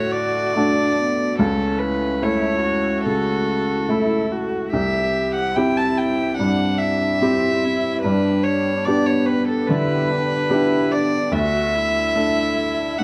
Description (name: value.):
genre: neoclassical piano and strings.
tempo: 72 BPM.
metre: 4/4.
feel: rubato.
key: D major.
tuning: A4 = 440 Hz.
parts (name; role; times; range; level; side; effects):
warm violin; melody; 0.0-13.0 s; A4 to A5; -24 LUFS; equal; none.
dark cello; second line; 0.0-13.0 s; B3 to G4; -28 LUFS; equal; none.
felt-muted upright piano; accompaniment; 0.0-13.0 s; C2 to A4; -24 LUFS; equal; none.
sweeping resonant pad; sustained chords; 0.0-13.0 s; A3 to A4; -33 LUFS; equal; none.
room: moderate recital hall reverb, RT60 1.9 s.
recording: close, detailed microphones.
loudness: -20 LUFS.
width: mono.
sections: 0.0-13.0 A section.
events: none.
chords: 0.0 D; 1.4 A/C#; 4.7 C; 8.0 G; 11.3 D.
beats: 0.54 | 1.39 2.22 3.05 3.89 | 4.72 5.55 6.38 7.21 | 8.03 8.86 9.68 10.50 | 11.32 12.15 12.98.